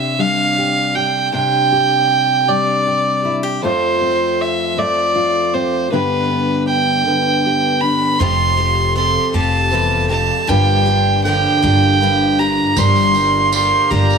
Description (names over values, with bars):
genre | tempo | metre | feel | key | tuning
indie folk with a building arrangement | 52 BPM (dotted quarters) | 6/8 | straight | unclear | A4 = 441 Hz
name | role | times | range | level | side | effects
rich fiddle | melody | 0.0-14.2 s | B4 to C6 | -16 LUFS | right 3 dB | none
fingerpicked steel-string acoustic guitar | accompaniment | 0.0-14.2 s | E2 to G4 | -19 LUFS | left 2 dB | none
picked twelve-string acoustic guitar | accompaniment | 8.2-14.2 s | G2 to A4 | -22 LUFS | left 5 dB | none
upright bass | bass | 8.2-14.2 s | F1 to G1 | -18 LUFS | equal | none
pedal harmonium | sustained chords | 12.8-14.2 s | D4 to G5 | -25 LUFS | right 1 dB | none
tambourine | percussion | 12.8-14.2 s | none | -26 LUFS | right 13 dB | none
room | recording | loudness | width
moderate echo chamber reverb, RT60 1.8 s, small room ambience | none | -13 LUFS | side -6 dB against mid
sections
0.0-8.2 A section; 8.2-14.2 B section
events
none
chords
0.0 Csus2; 3.6 F; 5.9 G; 8.2 Fadd9; 10.5 Gm7